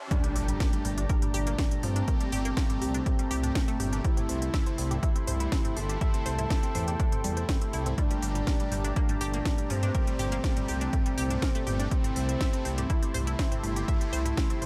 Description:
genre	melodic techno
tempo	122 BPM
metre	4/4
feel	straight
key	G dorian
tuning	A4 = 440 Hz
part	warm analog pad	sustained chords	0.0-14.7 s	G4 to C6	-44 LUFS	equal	chorus, sidechain pumping
part	riser and impact	sound effects	0.0-2.1 s	none	-40 LUFS	equal	none
part	expressive portamento lead	melody	0.1-14.7 s	C4 to A4	-37 LUFS	equal	chorus, sidechain pumping, delay
part	tight sequenced synth	arpeggios	0.1-14.7 s	F3 to E5	-41 LUFS	equal	chorus, sidechain pumping, dub echo
part	brassy analog pad	stabs	0.1-14.7 s	Bb2 to G4	-40 LUFS	equal	chorus, sidechain pumping, dub echo
part	electronic kick drum	drums	0.1-14.5 s	none	-30 LUFS	equal	none
part	techno drum kit	drums	0.1-14.7 s	hi-hat, snare drum, toms	-38 LUFS	equal	overdrive, sidechain pumping on hats, sidechain pumping on toms
part	dark detuned saw bass	bass	0.4-14.7 s	G1 to G2	-33 LUFS	equal	sidechain pumping
room	light reverb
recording	high-pass filter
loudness	-28 LUFS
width	mono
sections	0.1-14.7 A section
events	drop 0.1-14.7; impact 0.1-2.1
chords	0.1 Gmadd9; 4.0 C6; 8.0 Gmadd9; 11.9 C6

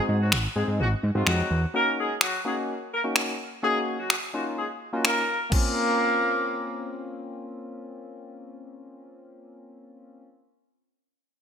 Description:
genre	dance-pop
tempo	127 BPM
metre	4/4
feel	straight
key	Bb minor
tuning	A4 = 440 Hz
part	soft electric-piano-like synth keys	accompaniment	0.0-10.3 s	Ab3 to Ab4	-32 LUFS	left 2 dB	chorus, sidechain pumping
part	fat analog bass	bass	0.1-1.7 s	Ab1 to Ab2	-24 LUFS	equal	sidechain pumping
part	warm horn section	melody	0.2-6.9 s	F3 to Bb4	-27 LUFS	equal	sidechain pumping, digital delay
part	pop drum kit	drums	0.3-5.6 s	crash cymbal, finger snaps, kick drum	-25 LUFS	equal	gated reverb
room	moderate lush hall reverb, RT60 1.6 s, digital ambience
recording	bright 1980s-style digital production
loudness	-23 LUFS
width	side -8 dB against mid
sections	0.0-5.5 A section; 5.5-9.3 B section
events	none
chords	0.0 Ab7; 1.7 Ebm7; 5.5 Bbmadd9

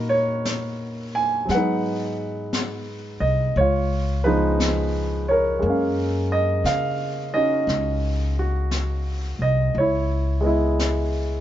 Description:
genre	jazz ballad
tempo	58 BPM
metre	4/4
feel	swing 66% on 8ths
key	unclear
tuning	A4 = 440 Hz
part	warm grand piano	accompaniment	0.0-11.4 s	Bb2 to Ab5	-22 LUFS	right 1 dB	none
part	upright bass	bass	0.0-11.4 s	C2 to Db3	-24 LUFS	equal	none
part	jazz brush drum kit	drums	0.5-11.4 s	brushed snare drum, hi-hat, snare drum	-32 LUFS	left 2 dB	none
room	light reverb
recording	band playing live in one room, nothing above 7.5 kHz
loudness	-20 LUFS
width	side -12 dB against mid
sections	0.0-11.4 A section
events	none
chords	0.0 Ebm9; 1.5 Abm7; 3.6 Db13; 5.6 Gbmaj9; 9.8 Dbm9

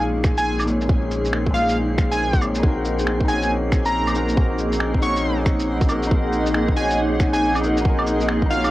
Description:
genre	future garage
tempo	138 BPM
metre	4/4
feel	swing 63% on 16ths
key	unclear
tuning	A4 = 440 Hz
part	plucky unison lead	melody	0.0-8.7 s	F5 to Db6	-25 LUFS	equal	cassette tape, analog delay
part	felt-muted upright piano	accompaniment	0.0-8.7 s	Bb2 to F5	-26 LUFS	left 2 dB	sidechain pumping, cassette tape, tape echo
part	granular cloud pad	sustained chords	0.0-8.7 s	Bb3 to Gb5	-24 LUFS	right 1 dB	built-in reverb, vintage 12-bit sampler grit, sidechain pumping, cassette tape
part	soft dub sub bass	bass	0.0-8.7 s	Bb1	-26 LUFS	equal	sidechain pumping
part	drifting glass-harmonics texture	texture	0.0-8.7 s	C4 to C7	-31 LUFS	left 1 dB	chorus, built-in reverb, cassette tape
part	electronic finger snaps, cabasa, shaker and claves	drums	0.2-8.7 s	none	-28 LUFS	right 1 dB	cassette tape
part	electronic kick drum	drums	0.2-8.5 s	none	-19 LUFS	equal	cassette tape
room	light reverb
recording	home recording on cassette, vinyl crackle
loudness	-18 LUFS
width	side -16 dB against mid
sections	0.0-8.7 A section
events	none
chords	0.0 Bbm7; 2.6 Ebm/Bb

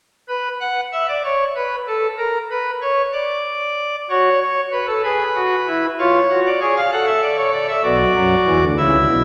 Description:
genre	classical, baroque-style 3-part fugue for pipe organ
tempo	64 BPM (dotted quarters)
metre	6/8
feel	straight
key	B minor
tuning	A4 = 440 Hz
part	pipe organ, cornet	solo	0.3-9.2 s	B1 to F#5	-18 LUFS	equal	none
room	wet scoring stage reverb, RT60 2.1 s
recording	none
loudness	-18 LUFS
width	mono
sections	0.3-9.2 A section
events	none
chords	0.3 N.C.; 4.1 F#m; 5.0 Eadd9; 6.0 C#/E#; 6.9 F#m/A; 7.9 Bm

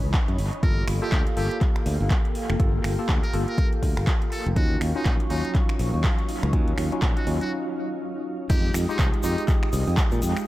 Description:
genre	deep house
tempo	122 BPM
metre	4/4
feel	swing 59% on 16ths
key	unclear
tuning	A4 = 440 Hz
part	tine electric piano	stabs	0.0-10.4 s	Ab3 to Cb5	-30 LUFS	equal	medium stereo tremolo, sidechain pumping, analog delay
part	modern bright fingered electric bass	bass	0.0-10.3 s	F1 to Bb2	-26 LUFS	equal	tube saturation, sidechain pumping
part	granular cloud pad	texture	0.0-10.5 s	Fb3 to Cb6	-36 LUFS	left 1 dB	built-in reverb, sidechain pumping
part	deep house drum kit	drums	0.1-10.4 s	crash cymbal, finger snaps, handclaps, hi-hat	-33 LUFS	equal	overdrive, analog delay
part	electronic kick drum	drums	0.1-10.1 s	none	-23 LUFS	equal	overdrive
part	trumpet with metal mute	melody	0.6-9.4 s	Eb4 to Bb4	-36 LUFS	equal	analog delay
part	hollow soft pad	sustained chords	0.6-10.5 s	Gb3 to Eb6	-37 LUFS	equal	chorus, sidechain pumping
part	egg shaker	percussion	8.5-10.4 s	none	-40 LUFS	left 2 dB	none
room	little or no reverb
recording	echo-heavy mix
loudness	-21 LUFS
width	side -16 dB against mid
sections	0.0-8.5 A section; 8.5-10.5 B section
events	filter sweep on tine electric piano 0.0-8.5; break 7.5-8.5; drop 8.5-10.5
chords	0.4 Gm9; 4.6 Ebm9; 8.5 Fm9

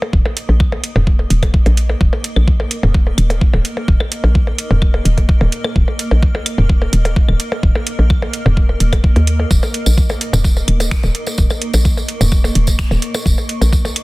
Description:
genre	minimal techno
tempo	128 BPM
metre	4/4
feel	straight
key	unclear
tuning	A4 = 439 Hz
part	electronic percussion blips, claves and toms	percussion	0.0-14.0 s	none	-21 LUFS	left 1 dB	studio reverb
part	granular cloud pad	texture	0.0-14.0 s	Bb3 to F6	-27 LUFS	equal	built-in reverb, sidechain pumping
part	hollow knocking FM bass	bass	0.1-13.9 s	Eb1 to Eb2	-15 LUFS	equal	sidechain pumping
part	electronic kick drum	drums	0.1-13.8 s	none	-14 LUFS	equal	overdrive, studio reverb
part	garage drum kit	drums	0.4-14.0 s	finger snaps, hi-hat	-22 LUFS	right 3 dB	overdrive, studio reverb, soft clipping on snare
part	tambourine	percussion	9.5-13.9 s	none	-26 LUFS	right 2 dB	none
room	little or no reverb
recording	dense, heavily limited modern master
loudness	-12 LUFS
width	side -22 dB against mid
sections	0.0-14.0 A section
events	fade-in on ambient pad 0.0-14.0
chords	0.0 Eb5

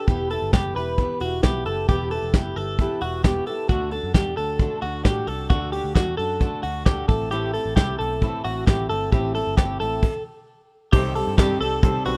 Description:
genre	jangly indie pop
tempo	133 BPM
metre	4/4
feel	straight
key	unclear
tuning	A4 = 440 Hz
part	fingerpicked steel-string acoustic guitar	accompaniment	0.0-12.2 s	A2 to B4	-33 LUFS	equal	none
part	twelve-string electric guitar	arpeggios	0.0-12.2 s	F#4 to B4	-28 LUFS	equal	spring reverb
part	vintage muted picked electric bass	bass	0.1-12.2 s	E1 to C3	-32 LUFS	equal	none
part	soft brush drum kit	drums	0.1-12.2 s	crash cymbal, hi-hat, kick drum, ride cymbal, snare drum	-22 LUFS	equal	none
part	clear upright piano	accompaniment	10.9-12.2 s	Eb4 to D5	-34 LUFS	equal	none
room	studio reverb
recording	rough home demo mix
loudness	-23 LUFS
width	mono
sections	0.0-10.9 A section; 10.9-12.2 B section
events	stop 10.0-10.9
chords	0.1 Em; 3.7 D; 7.1 Am; 10.9 Cm6

